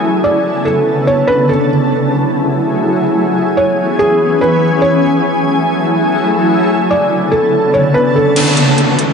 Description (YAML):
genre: hip hop, atmospheric cloud-rap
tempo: 144 BPM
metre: 4/4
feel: half-time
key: F# minor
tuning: A4 = 440 Hz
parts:
  - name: shimmering ambient pad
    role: sustained chords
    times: 0.0-9.1 s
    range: C#3 to A4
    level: -12 LUFS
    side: equal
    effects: chorus, built-in reverb
  - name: felt-muted upright piano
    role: melody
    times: 0.2-8.4 s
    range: G#4 to D5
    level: -15 LUFS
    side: equal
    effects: digital delay
  - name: trap drum kit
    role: drums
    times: 8.4-9.1 s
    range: crash cymbal, hi-hat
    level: -19 LUFS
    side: left 2 dB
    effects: none
  - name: downlifter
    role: sound effects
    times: 8.4-9.1 s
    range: none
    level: -15 LUFS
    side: right 2 dB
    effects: none
room: moderate huge ambient reverb, RT60 7.8 s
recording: nothing above 10.5 kHz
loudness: -10 LUFS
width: side -6 dB against mid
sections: 0.0-8.4 A section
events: kick muted 8.4-9.1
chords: 0.0 Bm9; 1.7 F#m9; 3.4 C#m7; 5.0 F#m9; 6.7 Bm9; 8.4 F#m9